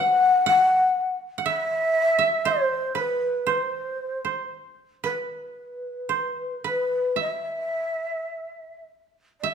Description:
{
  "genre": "japanese traditional, Japanese chamber music",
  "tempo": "53-62 BPM",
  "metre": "4/4",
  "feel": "rubato",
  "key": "unclear",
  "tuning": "A4 = 440 Hz",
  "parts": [
    { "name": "breathy mellow long shakuhachi", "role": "melody", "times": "0.0-9.5 s", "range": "B4 to F#5", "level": "-22 LUFS", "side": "left 1 dB", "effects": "none" },
    { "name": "koto", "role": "second line", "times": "0.0-9.5 s", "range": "B4 to F#5", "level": "-28 LUFS", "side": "right 6 dB", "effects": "none" }
  ],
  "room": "moderate recital hall reverb, RT60 1.4 s",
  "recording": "none",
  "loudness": "-22 LUFS",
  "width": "side -7 dB against mid",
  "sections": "0.0-9.4 A section",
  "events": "none",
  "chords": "none"
}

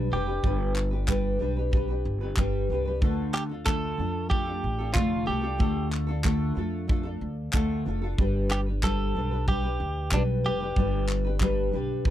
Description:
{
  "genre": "acoustic pop",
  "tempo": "93 BPM",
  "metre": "4/4",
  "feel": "straight",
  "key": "unclear",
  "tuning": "A4 = 443 Hz",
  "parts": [
    { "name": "nylon-string guitar", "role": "accompaniment", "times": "0.0-12.1 s", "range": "D3 to B4", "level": "-29 LUFS", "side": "left 1 dB", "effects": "double-tracked left and right" },
    { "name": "upright bass", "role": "bass", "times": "0.0-12.1 s", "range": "F1 to F2", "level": "-29 LUFS", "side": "equal", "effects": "none" },
    { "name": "direct-recorded clean electric guitar", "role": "melody", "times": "0.1-11.1 s", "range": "D4 to A4", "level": "-31 LUFS", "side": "right 3 dB", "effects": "none" },
    { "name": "modern studio drum kit", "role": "drums", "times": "0.4-12.1 s", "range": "handclaps, kick drum", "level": "-27 LUFS", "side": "equal", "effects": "none" }
  ],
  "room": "little or no reverb",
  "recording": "dry, close 1970s-style studio recording",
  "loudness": "-24 LUFS",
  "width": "side -12 dB against mid",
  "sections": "0.0-12.1 A section",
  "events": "none",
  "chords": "0.0 G; 3.0 Dm; 8.2 G"
}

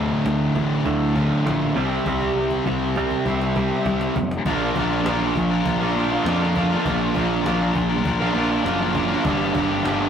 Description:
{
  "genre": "quiet-loud alternative rock",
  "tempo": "100 BPM",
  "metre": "4/4",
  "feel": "straight",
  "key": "unclear",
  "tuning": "A4 = 440 Hz",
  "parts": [
    { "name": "twangy electric guitar", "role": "arpeggios", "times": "0.0-4.4 s", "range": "D2 to C4", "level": "-27 LUFS", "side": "right 3 dB", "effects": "none" },
    { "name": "thick fuzz guitar", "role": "riff", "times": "0.0-10.1 s", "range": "D2 to Bb4", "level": "-24 LUFS", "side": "left 4 dB", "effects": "distortion" },
    { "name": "thick fuzz guitar", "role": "riff", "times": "0.0-10.1 s", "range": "D2 to C5", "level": "-23 LUFS", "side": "right 3 dB", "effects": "distortion" },
    { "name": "fuzz picked electric bass", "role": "bass", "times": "0.0-10.1 s", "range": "D1 to F2", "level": "-26 LUFS", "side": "equal", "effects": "overdrive" },
    { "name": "cajon", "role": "drums", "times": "0.3-10.0 s", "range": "none", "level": "-32 LUFS", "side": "equal", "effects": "none" }
  ],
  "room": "wet stone room reverb, RT60 1.1 s",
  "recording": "rough rehearsal-room recording, warm saturation",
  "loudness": "-19 LUFS",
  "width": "side -8 dB against mid",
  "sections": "0.0-4.5 A section; 4.5-10.1 B section",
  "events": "drum fill 2.1-4.5",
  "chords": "0.0 Dm; 1.8 C; 4.5 Bb; 9.2 Gm"
}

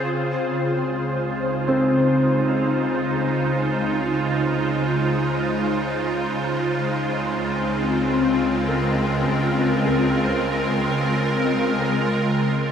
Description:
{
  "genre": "ambient",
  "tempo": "77 BPM",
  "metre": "4/4",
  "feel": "straight",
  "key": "Db major",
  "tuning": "A4 = 442 Hz",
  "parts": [
    { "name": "evolving wavetable pad", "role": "sustained chords", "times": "0.0-12.7 s", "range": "Db3 to C5", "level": "-20 LUFS", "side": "equal", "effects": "ensemble chorus, built-in reverb, shimmer reverb" },
    { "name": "warm chamber cello section", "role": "bass", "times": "0.1-12.5 s", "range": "Db2", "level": "-31 LUFS", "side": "equal", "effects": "none" },
    { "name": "felt-muted upright piano", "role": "arpeggios", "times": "1.7-12.7 s", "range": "Ab3 to C5", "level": "-27 LUFS", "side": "left 1 dB", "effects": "diffuse ambient delay, shimmer reverb" }
  ],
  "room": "wet huge ambient reverb, RT60 7.1 s",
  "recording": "none",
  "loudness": "-19 LUFS",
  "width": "side -8 dB against mid",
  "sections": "0.1-12.6 A section",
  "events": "fade-in on cello section 0.1-12.6; fade-out on felt piano 0.1-12.6",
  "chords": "0.0 Dbmaj9"
}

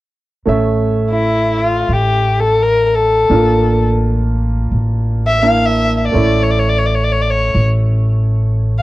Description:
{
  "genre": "klezmer",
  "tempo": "free time",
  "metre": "none",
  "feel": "none",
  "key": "unclear",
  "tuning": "A4 = 440 Hz",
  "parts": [
    { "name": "clear upright piano", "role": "accompaniment", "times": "0.5-8.8 s", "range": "A3 to E5", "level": "-19 LUFS", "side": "right 3 dB", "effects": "none" },
    { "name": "upright bass", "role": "bass", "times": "0.5-8.8 s", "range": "A1", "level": "-16 LUFS", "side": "equal", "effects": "none" },
    { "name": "dark violin", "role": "melody", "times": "1.1-8.8 s", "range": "E4 to F5", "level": "-15 LUFS", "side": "left 2 dB", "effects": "none" }
  ],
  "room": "small room ambience",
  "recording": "dry, close 1970s-style studio recording",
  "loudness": "-12 LUFS",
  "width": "side -17 dB against mid",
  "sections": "0.5-8.8 A section",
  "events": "none",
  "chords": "0.5 A; 3.3 Bb/A; 6.1 A"
}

